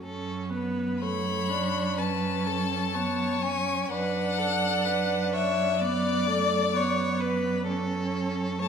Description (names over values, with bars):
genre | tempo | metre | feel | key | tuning
classical, slow romantic movement for string quartet | 63 BPM | 4/4 | rubato | F# minor | A4 = 439 Hz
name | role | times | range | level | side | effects
rich violin | second line | 0.0-8.7 s | A4 to D5 | -31 LUFS | left 1 dB | none
warm viola | accompaniment | 0.0-8.7 s | A3 to D4 | -31 LUFS | right 3 dB | none
rich cello | bass | 0.0-8.7 s | F#2 | -31 LUFS | right 4 dB | none
clear violin | melody | 1.0-8.7 s | D5 to B5 | -29 LUFS | left 8 dB | none
room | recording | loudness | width
wet recital hall reverb, RT60 1.8 s | minimal, uncompressed stereo recording | -25 LUFS | side -7 dB against mid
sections
0.0-8.7 A section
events
none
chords
0.0 F#m; 3.9 Bm/F#; 7.7 F#m